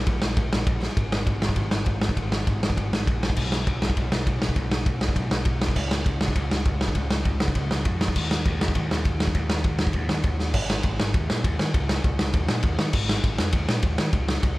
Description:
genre	punk rock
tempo	201 BPM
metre	4/4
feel	straight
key	unclear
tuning	A4 = 440 Hz
part	overdriven picked electric bass	bass	0.0-14.6 s	Ab1 to Eb3	-27 LUFS	equal	none
part	raw garage drum kit	drums	0.1-14.5 s	crash cymbal, kick drum, ride cymbal, snare drum	-23 LUFS	equal	none
room	little or no reverb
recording	none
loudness	-22 LUFS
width	side -19 dB against mid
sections	1.0-10.6 A section; 10.6-14.6 B section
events	drum fill 0.8, 10.4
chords	none

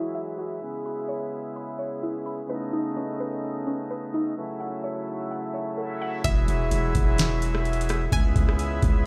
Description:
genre	hip hop, atmospheric cloud-rap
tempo	128 BPM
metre	4/4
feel	half-time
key	E major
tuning	A4 = 440 Hz
part	accordion	sustained chords	0.0-9.1 s	C#3 to E4	-32 LUFS	equal	sidechain pumping
part	mallet-like synth pluck	arpeggios	0.0-6.2 s	C#4 to B5	-36 LUFS	equal	chorus, tape echo
part	string-like resonator pluck	melody	6.2-9.0 s	E5 to G#5	-36 LUFS	equal	chorus, tape echo
part	long sustained 808-style bass	bass	6.2-9.1 s	E1 to C#2	-27 LUFS	equal	none
part	booming analog drum machine	drums	6.2-9.0 s	hi-hat, kick drum, rim click, snare drum	-26 LUFS	equal	none
room	little or no reverb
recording	played on a big sound system in a bare room, stone room reverb, low-pass filter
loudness	-27 LUFS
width	mono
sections	0.0-6.2 A section; 6.2-9.1 B section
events	filter sweep 0.0-6.2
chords	0.0 Eadd9; 0.6 C#m7; 2.5 B9; 4.4 A6; 6.2 Eadd9; 8.1 C#m7

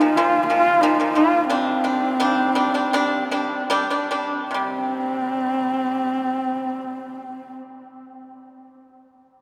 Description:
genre	mongolian traditional, Mongolian folk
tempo	71-93 BPM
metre	4/4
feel	straight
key	C minor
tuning	A4 = 438 Hz
part	warm horsehead fiddle	melody	0.0-7.5 s	C4 to F4	-23 LUFS	equal	none
part	pipa	arpeggios	0.0-7.5 s	Bb2 to D4	-26 LUFS	equal	none
room	wet cathedral reverb, RT60 6.3 s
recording	recorded in a church or concert hall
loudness	-21 LUFS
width	mono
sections	0.0-4.5 A section; 4.5-7.9 B section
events	slowing down 0.0-4.5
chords	0.0 Bb5; 1.5 G5; 4.5 C5

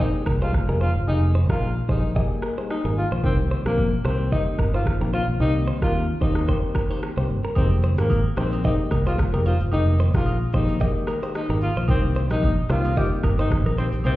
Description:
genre	afrobeats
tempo	111 BPM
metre	4/4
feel	swing 55% on 16ths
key	F minor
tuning	A4 = 439 Hz
part	breathy tenor saxophone	melody	0.0-14.2 s	Bb3 to G4	-28 LUFS	left 1 dB	ping-pong delay
part	barking FM electric piano	accompaniment	0.0-14.2 s	Eb3 to Ab4	-29 LUFS	left 4 dB	chorus
part	direct-recorded clean electric guitar	riff	0.0-13.9 s	Bb4 to Eb5	-32 LUFS	right 1 dB	ping-pong delay
part	fingered electric bass	bass	0.0-14.2 s	F1 to Eb2	-22 LUFS	equal	none
part	afro-pop drum kit	drums	0.0-14.2 s	kick drum, rim click, shaker	-24 LUFS	equal	none
part	agogo bells	percussion	7.6-14.2 s	none	-39 LUFS	right 1 dB	none
room	light reverb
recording	heard muffled through a wall, stone room reverb, EQ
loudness	-20 LUFS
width	side -16 dB against mid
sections	0.0-14.2 A section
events	break 0.0-7.6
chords	0.0 Fm11; 3.2 Cm7; 7.6 Fm11; 11.9 Cm7

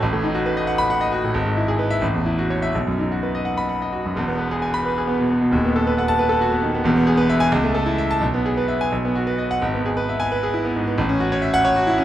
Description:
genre	classical, virtuoso piano study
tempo	82-92 BPM (dotted quarters)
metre	6/8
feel	rubato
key	E major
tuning	A4 = 439 Hz
part	bright concert grand piano	solo	0.0-12.0 s	D#1 to B5	-18 LUFS	equal	none
room	moderate concert hall reverb, RT60 2.5 s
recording	none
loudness	-18 LUFS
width	side -12 dB against mid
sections	0.0-4.2 A section; 4.2-12.0 B section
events	none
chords	0.0 B7/A; 1.3 E/G#; 2.0 F#m7/A; 2.7 B; 4.2 E; 5.5 B7/D#; 6.8 E; 7.5 A/C#; 8.2 E/B; 8.9 B; 9.6 E/G#; 11.0 F#m7/A

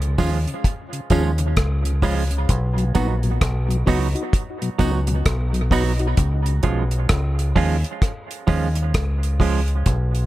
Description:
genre	dub reggae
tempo	65 BPM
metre	4/4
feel	swing 62% on 16ths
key	Db mixolydian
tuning	A4 = 440 Hz
part	mellow tonewheel organ	accompaniment	0.0-6.5 s	Cb3 to Gb4	-28 LUFS	left 2 dB	stopped rotary speaker, dub echo
part	deep dub fingered electric bass	bass	0.0-10.3 s	Bb1 to Eb2	-20 LUFS	equal	none
part	deep reggae drum kit	drums	0.0-10.3 s	hi-hat, kick drum, rim click	-22 LUFS	equal	none
part	semi-hollow electric guitar	accompaniment	0.2-9.6 s	F3 to Gb4	-26 LUFS	right 6 dB	dub echo
part	tambourine and woodblock	percussion	0.2-6.0 s	none	-38 LUFS	right 3 dB	dub echo
room	light reverb, small room ambience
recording	echo-heavy mix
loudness	-18 LUFS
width	side -16 dB against mid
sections	0.0-10.3 A section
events	part muted 6.2-10.3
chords	0.0 Db; 2.5 Cb; 6.2 Db

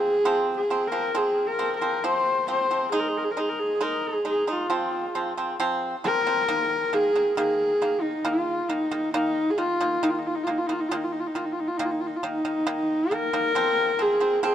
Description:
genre	mongolian traditional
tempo	68 BPM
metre	4/4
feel	straight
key	unclear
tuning	A4 = 439 Hz
part	clear horsehead fiddle	melody	0.0-14.5 s	Eb4 to C5	-24 LUFS	left 1 dB	none
part	pipa	arpeggios	0.0-14.5 s	Eb3 to Eb4	-28 LUFS	right 2 dB	none
room	moderate huge ambient reverb, RT60 6.4 s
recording	dark, warm production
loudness	-22 LUFS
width	side -10 dB against mid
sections	0.0-6.5 A section; 6.5-14.5 B section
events	none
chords	0.0 F5; 2.9 Ab5; 4.7 F5; 6.5 Eb5; 13.5 F5

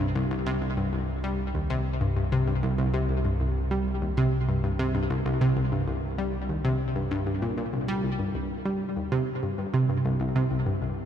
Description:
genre	ambient, sequencer-driven space music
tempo	97 BPM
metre	4/4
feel	straight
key	unclear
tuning	A4 = 438 Hz
part	analog pluck	riff	0.0-10.9 s	C2 to G3	-25 LUFS	equal	chorus, tape echo, shimmer reverb
part	warm sub bass	bass	0.0-8.0 s	C2	-32 LUFS	equal	none
room	wet cathedral reverb, RT60 6.0 s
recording	in a vast, echoing space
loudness	-25 LUFS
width	side -9 dB against mid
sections	0.0-8.0 A section; 8.0-11.1 B section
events	none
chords	0.0 C5

